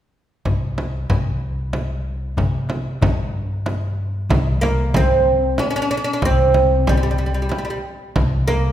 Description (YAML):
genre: Persian modal ensemble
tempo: 93 BPM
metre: 3/4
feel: straight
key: unclear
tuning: A4 = 440 Hz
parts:
  - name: upright bass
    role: bass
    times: 0.5-8.7 s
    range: C2 to C3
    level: -21 LUFS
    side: equal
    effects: none
  - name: frame drum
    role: percussion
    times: 0.5-8.6 s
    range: none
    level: -23 LUFS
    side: right 1 dB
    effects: none
  - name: tombak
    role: percussion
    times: 0.5-3.8 s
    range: none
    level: -24 LUFS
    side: left 3 dB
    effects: none
  - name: oud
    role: melody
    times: 4.6-8.7 s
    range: G3 to Db4+45c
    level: -18 LUFS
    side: right 2 dB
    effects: none
room: wet recital hall reverb, RT60 1.7 s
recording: minimal, uncompressed stereo recording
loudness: -17 LUFS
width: side -11 dB against mid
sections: 0.5-4.3 A section; 4.3-8.7 B section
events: none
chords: none